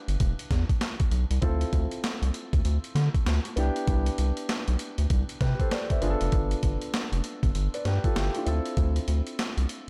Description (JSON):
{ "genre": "R&B, new jack swing", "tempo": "98 BPM", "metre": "4/4", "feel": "swing 62% on 16ths", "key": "D dorian", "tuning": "A4 = 440 Hz", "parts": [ { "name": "warm concert grand piano", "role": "accompaniment", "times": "0.0-9.9 s", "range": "B3 to E5", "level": "-36 LUFS", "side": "equal", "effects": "none" }, { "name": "round analog bass", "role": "bass", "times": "0.1-9.7 s", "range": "E1 to D3", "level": "-28 LUFS", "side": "equal", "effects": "none" }, { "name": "boom bap sampler-style drum kit", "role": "drums", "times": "0.1-9.9 s", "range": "handclaps, hi-hat, kick drum, snare drum", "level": "-31 LUFS", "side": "equal", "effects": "none" } ], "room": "digital ambience", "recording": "none", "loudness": "-27 LUFS", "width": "mono", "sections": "0.0-9.9 A section", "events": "none", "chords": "0.0 Em7; 1.4 Dm7; 3.6 Cmaj7; 6.0 G7; 8.5 Dm7" }